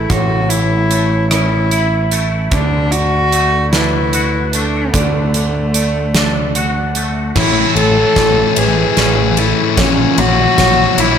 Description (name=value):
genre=post-rock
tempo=50 BPM (dotted quarters)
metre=6/8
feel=straight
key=A major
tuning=A4 = 440 Hz
part: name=dark cello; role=melody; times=0.0-11.2 s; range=A3 to A4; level=-16 LUFS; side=left 1 dB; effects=digital delay
part: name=twangy electric guitar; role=arpeggios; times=0.0-11.2 s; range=A2 to F#4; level=-23 LUFS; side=left 2 dB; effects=ensemble chorus, digital delay
part: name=vibraphone with hard mallets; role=arpeggios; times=0.0-11.2 s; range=A4 to F#5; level=-23 LUFS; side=right 6 dB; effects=digital delay
part: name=growling picked electric bass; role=bass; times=0.0-11.2 s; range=A1 to D2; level=-17 LUFS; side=right 1 dB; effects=overdrive
part: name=big rock drum kit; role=drums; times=0.1-11.2 s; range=crash cymbal, hi-hat, kick drum, ride cymbal, rim click, snare drum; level=-18 LUFS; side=right 1 dB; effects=none
part: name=dark chamber string section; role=sustained chords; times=7.4-11.2 s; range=C#5 to E6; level=-28 LUFS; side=equal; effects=none
part: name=sludgy distorted guitar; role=riff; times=7.4-11.2 s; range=A2 to E3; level=-16 LUFS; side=left 13 dB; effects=overdrive
room=light reverb, small room ambience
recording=none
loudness=-11 LUFS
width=side -8 dB against mid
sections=0.0-7.4 A section; 7.4-11.2 B section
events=build-up 7.4-11.2; drum fill 7.4-11.2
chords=0.0 A; 2.5 D; 7.4 Amaj7; 9.8 F#7/A#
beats=| 0.11 1.31 | 2.52 3.73 | 4.94 6.15 | 7.36 8.57 | 9.78 10.98